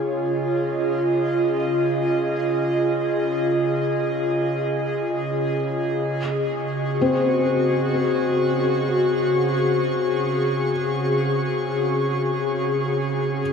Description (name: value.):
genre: ambient.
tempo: free time.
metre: none.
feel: none.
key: unclear.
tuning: A4 = 437 Hz.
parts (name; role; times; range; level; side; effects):
airy breathy pad; sustained chords; 0.0-13.5 s; Db3 to Db6; -20 LUFS; equal; chorus.
felt-muted upright piano; arpeggios; 7.0-13.4 s; C4; -26 LUFS; left 2 dB; ping-pong delay.
room: wet cathedral reverb, RT60 5.9 s.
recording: in a vast, echoing space.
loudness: -20 LUFS.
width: side -6 dB against mid.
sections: 0.0-13.5 A section.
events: none.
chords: 0.0 Dbadd9; 6.0 Gbsus2/Db.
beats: free time.